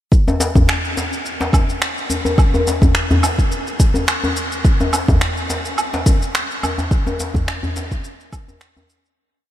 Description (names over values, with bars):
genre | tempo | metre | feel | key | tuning
downtempo | 106 BPM | 4/4 | swing 55% on 16ths | none | none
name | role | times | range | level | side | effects
electronic kick drum | drums | 0.1-8.4 s | none | -14 LUFS | equal | studio reverb
electronic shaker, finger snaps and woodblock | drums | 0.1-9.2 s | none | -22 LUFS | right 1 dB | studio reverb
djembe | percussion | 0.3-8.9 s | none | -20 LUFS | left 1 dB | none
room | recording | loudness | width
light reverb | none | -15 LUFS | side -12 dB against mid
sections
0.1-9.2 groove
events
fade-out 6.2-9.2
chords
none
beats
| 0.12 0.69 1.25 1.82 | 2.38 2.95 3.52 4.08 | 4.65 5.21 5.78 6.35 | 6.91 7.48 8.04 8.61